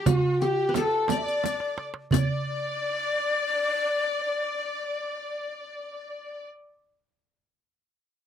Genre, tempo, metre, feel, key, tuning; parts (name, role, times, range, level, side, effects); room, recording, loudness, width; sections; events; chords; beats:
Arabic maqam ensemble; 58 BPM (dotted quarters); 6/8; straight; D maqam rast; A4 = 440 Hz
qanun; melody; 0.0-6.4 s; F#4-50c to D5; -27 LUFS; left 1 dB
breathy mellow ney; second line; 0.0-6.4 s; F4+44c to E5; -29 LUFS; left 4 dB
rich studio violin section; second line; 0.0-6.4 s; F#4-50c to D5; -32 LUFS; right 1 dB
darbuka; percussion; 0.1-2.4 s; -26 LUFS; right 3 dB
frame drum; percussion; 0.1-2.4 s; -29 LUFS; right 10 dB
riq; percussion; 0.1-2.5 s; -32 LUFS; left 14 dB
moderate booth ambience, RT60 0.2 s; dry, close 1970s-style studio recording; -24 LUFS; side -9 dB against mid
0.0-2.1 A section; 2.1-6.3 B section
drum fill 1.4-2.1
| 0.07 1.10 | 2.13 3.16 | 4.19 5.22